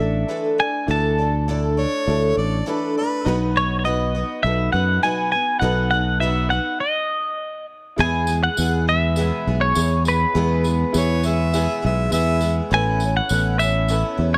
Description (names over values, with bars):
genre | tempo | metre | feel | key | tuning
folk rock and heartland rock | 101 BPM | 4/4 | straight | E major | A4 = 440 Hz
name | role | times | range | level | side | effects
twelve-string electric guitar | melody | 0.0-14.4 s | B4 to A5 | -24 LUFS | equal | none
picked twelve-string acoustic guitar | accompaniment | 0.0-14.4 s | E2 to D5 | -29 LUFS | equal | none
warm upright piano | accompaniment | 0.0-14.4 s | C#4 to C#5 | -32 LUFS | equal | none
fingered electric bass | bass | 0.0-14.4 s | A1 to F#2 | -23 LUFS | equal | none
warm harmonica | second line | 1.8-3.4, 11.0-12.6 s | B4 to E5 | -28 LUFS | equal | analog delay
tambourine | percussion | 8.3-14.0 s | none | -34 LUFS | equal | none
room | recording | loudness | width
light reverb, studio reverb | none | -20 LUFS | mono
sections
0.0-8.0 A section; 8.0-14.4 B section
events
stop 6.8-8.0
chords
0.0 Dsus2; 3.3 B; 8.0 E; 12.7 Aadd9